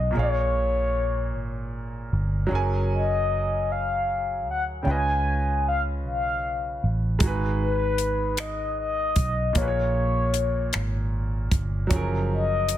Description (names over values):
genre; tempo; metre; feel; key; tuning
slow six-eight R&B; 51 BPM (dotted quarters); 6/8; straight; unclear; A4 = 440 Hz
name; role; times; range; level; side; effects
mellow horn-like synth lead; melody; 0.0-12.8 s; B4 to G#5; -26 LUFS; left 3 dB; chorus, slapback echo, plate reverb
clear baby grand piano; accompaniment; 0.0-12.8 s; A#2 to G#5; -31 LUFS; right 3 dB; plate reverb
vintage muted fingered electric bass; bass; 0.0-12.8 s; F#1 to D2; -26 LUFS; right 1 dB; none
compact cocktail drum kit; drums; 7.2-12.8 s; finger snaps, hi-hat, kick drum; -25 LUFS; equal; soft clipping on snare
room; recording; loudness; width
light reverb; dense, heavily limited modern master; -23 LUFS; side -12 dB against mid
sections
0.0-12.8 A section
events
none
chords
0.1 A#m7; 2.5 F#maj9; 4.9 C#7; 7.2 G#m7; 9.6 A#m7; 11.9 F#maj9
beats
| 0.14 1.32 | 2.50 3.67 | 4.85 6.03 | 7.20 8.38 | 9.56 10.73 | 11.91